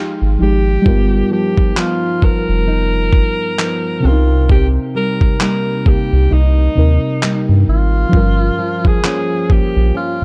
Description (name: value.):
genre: contemporary R&B.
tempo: 66 BPM.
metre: 4/4.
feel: swing 58% on 16ths.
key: unclear.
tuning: A4 = 442 Hz.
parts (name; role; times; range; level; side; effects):
warm alto saxophone; melody; 0.0-10.2 s; Eb4 to Bb4; -23 LUFS; equal; none.
muted felt-like synth keys; accompaniment; 0.0-10.2 s; C3 to G5; -23 LUFS; equal; chorus.
nylon-string guitar; arpeggios; 0.0-10.2 s; G2 to G4; -23 LUFS; equal; none.
round analog bass; bass; 0.2-10.2 s; F1 to G2; -16 LUFS; equal; none.
dusty soul sampler-style drum kit; drums; 0.9-9.7 s; handclaps, kick drum; -16 LUFS; equal; none.
room: little or no reverb.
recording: dark, warm production.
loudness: -14 LUFS.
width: mono.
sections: 0.0-10.2 A section.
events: none.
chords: 0.0 Fm9; 0.9 G7alt; 4.0 Cm7; 8.1 Gm7b5.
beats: | 0.86 1.77 2.68 3.59 | 4.50 5.40 6.31 7.22 | 8.13 9.04 9.95.